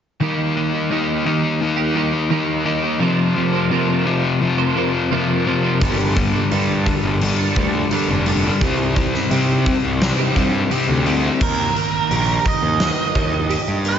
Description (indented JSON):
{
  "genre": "quiet-loud alternative rock",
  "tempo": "86 BPM",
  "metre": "4/4",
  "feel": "straight",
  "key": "unclear",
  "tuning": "A4 = 440 Hz",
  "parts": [
    { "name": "twelve-string electric guitar", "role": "arpeggios", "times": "0.2-14.0 s", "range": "C3 to C5", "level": "-24 LUFS", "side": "right 8 dB", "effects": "ensemble chorus, slapback echo" },
    { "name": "crunchy overdriven guitar", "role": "riff", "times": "0.2-11.4 s", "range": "F2 to Eb4", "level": "-18 LUFS", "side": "left 3 dB", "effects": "harmonic tremolo, slapback echo" },
    { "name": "fuzz picked electric bass", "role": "bass", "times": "5.8-14.0 s", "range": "F1 to C3", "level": "-22 LUFS", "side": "right 1 dB", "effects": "overdrive" },
    { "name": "huge arena drum kit", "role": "drums", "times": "5.8-14.0 s", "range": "crash cymbal, hi-hat, kick drum, snare drum", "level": "-22 LUFS", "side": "equal", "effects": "none" },
    { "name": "nasal lead guitar with a parked wah", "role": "melody", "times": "11.4-14.0 s", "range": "Bb4 to Eb5", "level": "-21 LUFS", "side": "right 5 dB", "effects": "overdrive, slapback echo" }
  ],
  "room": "moderate lush hall reverb, RT60 2.4 s",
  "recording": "big arena sound, nothing above 7.6 kHz",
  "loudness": "-16 LUFS",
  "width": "side -8 dB against mid",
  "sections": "0.2-11.4 A section; 11.4-14.0 B section",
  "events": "none",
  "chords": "0.2 Eb; 3.0 Fsus4; 5.8 Gmadd9; 8.6 Cm; 11.4 Eb"
}